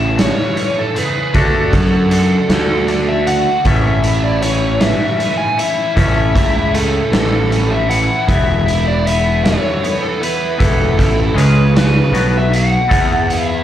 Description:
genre	indie rock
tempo	52 BPM (dotted quarters)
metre	6/8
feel	straight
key	A major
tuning	A4 = 441 Hz
part	biting lead guitar	melody	0.0-13.6 s	A4 to G#5	-18 LUFS	left 1 dB	overdrive, plate reverb, slapback echo
part	distorted electric guitar	riff	0.0-13.6 s	E2 to G#4	-21 LUFS	right 4 dB	distortion, ensemble chorus, slapback echo
part	twangy electric guitar	riff	0.0-13.6 s	E3 to A4	-24 LUFS	left 6 dB	slapback echo
part	fuzz picked electric bass	bass	0.0-13.6 s	E1 to F#2	-16 LUFS	equal	overdrive
part	raw garage drum kit	drums	0.2-13.5 s	hi-hat, kick drum, snare drum	-18 LUFS	equal	none
room	light reverb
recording	live gig heard through the venue's PA, club reverb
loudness	-12 LUFS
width	side -11 dB against mid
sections	0.0-13.6 A section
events	none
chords	0.0 Amaj7; 1.3 D; 3.7 A; 8.3 Esus4; 11.4 C#5; 12.1 B5; 12.9 Esus4

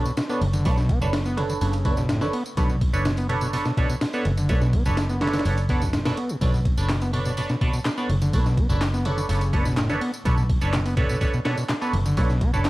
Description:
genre	breakbeat, breaks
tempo	125 BPM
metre	4/4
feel	straight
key	B minor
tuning	A4 = 440 Hz
part	overdriven acid bass	riff	0.0-12.6 s	B1 to B3	-27 LUFS	equal	distortion, tape echo
part	band-passed chord stab	stabs	0.0-12.6 s	D4 to C#5	-28 LUFS	right 3 dB	phaser, cassette tape, tape echo
part	electronic tambourine and handclaps	drums	0.1-12.7 s	none	-37 LUFS	equal	overdrive, small room ambience
part	breakbeat sampler-style drum kit	drums	0.2-12.7 s	kick drum, ride cymbal, snare drum	-25 LUFS	equal	small room ambience
part	fingered electric bass	bass	0.4-12.7 s	F#1 to B1	-24 LUFS	equal	none
room	digital ambience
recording	dry, gritty hardware recording, vinyl crackle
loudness	-20 LUFS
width	side -18 dB against mid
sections	0.0-12.7 A section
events	none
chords	0.0 Bm9

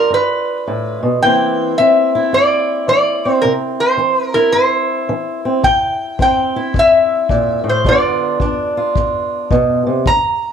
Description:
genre	acoustic country blues, solo or duo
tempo	109 BPM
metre	4/4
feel	swing 65% on 8ths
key	G mixolydian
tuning	A4 = 440 Hz
part	metal-body resonator slide guitar	melody	0.0-10.5 s	Bb4 to Bb5	-14 LUFS	left 1 dB	none
part	fingerpicked swing-style acoustic guitar	accompaniment	0.0-10.5 s	G2 to F4	-17 LUFS	right 1 dB	none
part	kick drum	drums	5.6-10.2 s	none	-20 LUFS	left 2 dB	none
room	light reverb, small room ambience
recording	1960s-style stereo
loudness	-12 LUFS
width	side -7 dB against mid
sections	0.0-10.5 A section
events	none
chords	0.0 G7; 1.2 C7; 7.8 G7

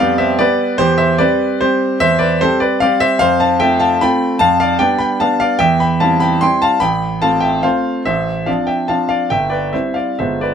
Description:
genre	classical, piano waltz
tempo	148 BPM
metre	3/4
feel	uneven beats, rubato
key	C major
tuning	A4 = 440 Hz
part	bright concert grand piano	solo	0.0-10.5 s	G1 to C6	-12 LUFS	equal	none
room	light reverb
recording	none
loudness	-12 LUFS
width	side -8 dB against mid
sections	0.0-10.5 A section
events	none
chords	0.0 G7/F; 0.8 C/E; 3.2 F; 4.4 G7/F; 5.6 C/E; 6.8 F/A; 8.1 Dm7/A; 9.3 C/G

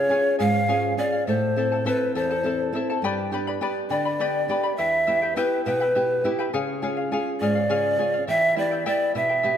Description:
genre	andean folk, Andean ensemble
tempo	68 BPM (dotted quarters)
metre	6/8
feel	straight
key	E dorian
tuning	A4 = 441 Hz
part	breathy large pan pipes	melody	0.0-9.6 s	B4 to E#5	-22 LUFS	equal	none
part	charango	accompaniment	0.0-9.6 s	E4 to B5	-29 LUFS	left 4 dB	none
part	nylon-string guitar	accompaniment	0.0-9.6 s	E2 to A4	-27 LUFS	right 2 dB	none
room	moderate concert hall reverb, RT60 2.3 s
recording	none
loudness	-21 LUFS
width	side -9 dB against mid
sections	0.0-9.6 A section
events	none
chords	0.0 C#; 1.3 Am; 3.0 G; 4.8 Em; 6.5 C#; 8.3 Em

